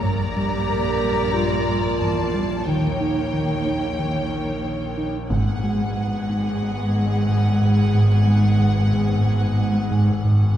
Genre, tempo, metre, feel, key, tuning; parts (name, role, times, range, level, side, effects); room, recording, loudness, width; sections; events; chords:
cinematic, suspense film score; 91 BPM; 4/4; straight; G# minor from 5.3 s; A4 = 439 Hz
rich studio violin section; melody; 0.0-10.5 s; F#5 to Bb5; -30 LUFS; left 2 dB
rich studio violin section; second line; 0.0-10.5 s; G#4 to D5; -32 LUFS; left 2 dB
warm clarinet; second line; 0.0-4.9 s; Eb4 to G4; -28 LUFS; right 2 dB
rich studio viola section; accompaniment; 0.0-10.5 s; Bb3 to B3; -32 LUFS; right 2 dB
smooth synth bass; riff; 0.0-10.4 s; G2 to Eb4; -22 LUFS; right 1 dB
rich studio cello section; bass; 0.0-10.5 s; Eb2 to G#2; -26 LUFS; equal
rich studio double bass section; bass; 0.0-10.5 s; G1 to Eb2; -24 LUFS; equal
overtone-sweeping drone; drone; 0.0-10.5 s; G#1 to Bb1; -31 LUFS; equal; chorus, built-in reverb
worn celesta; texture; 0.7-10.6 s; F#4 to G#5; -34 LUFS; right 1 dB
solo taiko drums; drums; 5.3-6.6 s; -28 LUFS; left 1 dB
wet scoring stage reverb, RT60 1.4 s; heard from further back in the room; -18 LUFS; side -11 dB against mid
0.0-5.3 A section; 5.3-10.6 B section
0.0 Gm; 2.7 Eb7/Bb; 5.3 G#m7